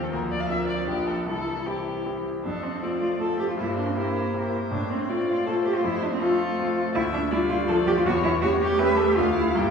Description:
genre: quick classical-period movement for piano quartet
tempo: 159 BPM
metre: 3/4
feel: straight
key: F major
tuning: A4 = 443 Hz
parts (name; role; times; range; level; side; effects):
- warm violin; melody; 0.0-9.7 s; G4 to G5; -33 LUFS; left 4 dB; none
- rich cello; second line; 0.0-9.7 s; Eb3 to B4; -27 LUFS; right 2 dB; none
- bright concert grand piano; accompaniment; 0.0-9.7 s; Bb1 to Bb4; -26 LUFS; left 2 dB; none
- warm viola; accompaniment; 0.0-9.7 s; E3 to E4; -32 LUFS; right 2 dB; none
room: wet scoring stage reverb, RT60 1.5 s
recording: heard from further back in the room, studio ambience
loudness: -22 LUFS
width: side -6 dB against mid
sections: 0.0-2.4 A section; 2.4-9.7 B section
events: none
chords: 0.1 Bb/D; 0.9 Bb; 1.3 C; 2.4 F; 3.6 C7/G; 4.7 F/A; 5.8 F; 7.0 Dm; 8.1 C#dim/E; 9.2 Dm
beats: | 0.11 0.49 0.87 | 1.26 1.66 2.05 | 2.45 2.83 3.21 | 3.58 3.96 4.34 | 4.71 5.09 5.47 | 5.84 6.21 6.58 | 6.95 7.32 7.69 | 8.06 8.43 8.80 | 9.17 9.55

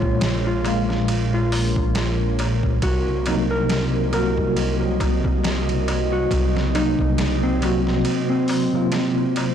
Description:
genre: trip hop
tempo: 69 BPM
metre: 4/4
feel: swing 56% on 16ths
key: unclear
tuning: A4 = 435 Hz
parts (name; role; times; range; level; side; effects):
- clean lap steel guitar; melody; 0.0-9.5 s; C4 to Bb4; -26 LUFS; equal; tape echo
- tine electric piano; accompaniment; 0.0-9.5 s; Bb2 to F5; -23 LUFS; equal; overdrive, fast stereo tremolo, tape echo
- deep dark ambient pad; sustained chords; 0.0-9.5 s; Gb3 to Eb5; -28 LUFS; right 1 dB; chorus, built-in reverb
- dark detuned saw bass; bass; 0.0-8.0 s; Bb1 to C2; -24 LUFS; equal; transformer saturation
- trip hop sampler-style drum kit; drums; 0.0-9.5 s; hi-hat, kick drum, ride cymbal, snare drum; -26 LUFS; equal; overdrive, studio reverb
- darbuka; percussion; 0.0-9.5 s; none; -34 LUFS; left 3 dB; none
room: digital ambience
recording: blown-out, overdriven recording, overdrive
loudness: -18 LUFS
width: side -9 dB against mid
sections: 0.0-9.5 A section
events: none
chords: 0.0 Bbm7; 2.8 Cm7b5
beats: 0.22 1.09 1.96 | 2.83 3.70 4.57 5.44 | 6.30 7.17 8.04 8.91

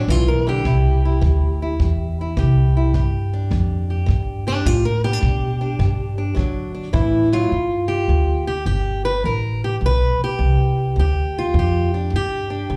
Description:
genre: acoustic country blues, solo or duo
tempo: 105 BPM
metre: 4/4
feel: swing 67% on 8ths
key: G mixolydian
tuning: A4 = 440 Hz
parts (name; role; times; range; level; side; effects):
- fingerpicked steel-string acoustic guitar; melody; 0.0-12.8 s; G2 to B4; -24 LUFS; equal; none
- upright bass; bass; 0.0-12.8 s; G1 to D3; -21 LUFS; equal; none
- kick drum; drums; 0.1-7.1 s; none; -26 LUFS; equal; none
room: little or no reverb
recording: live gig heard through the venue's PA, club reverb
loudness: -19 LUFS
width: mono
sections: 0.0-7.5 A section; 7.5-12.8 B section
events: steel-string acoustic guitar solo 0.0-7.5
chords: 0.0 N.C.; 0.7 C; 2.9 G; 6.4 D; 7.5 G5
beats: 0.08 | 0.66 1.23 1.80 2.37 | 2.94 3.51 4.08 4.65 | 5.22 5.80 6.37 6.94 | 7.52 8.09 8.66 9.24 | 9.81 10.39 10.96 11.54 | 12.12 12.69

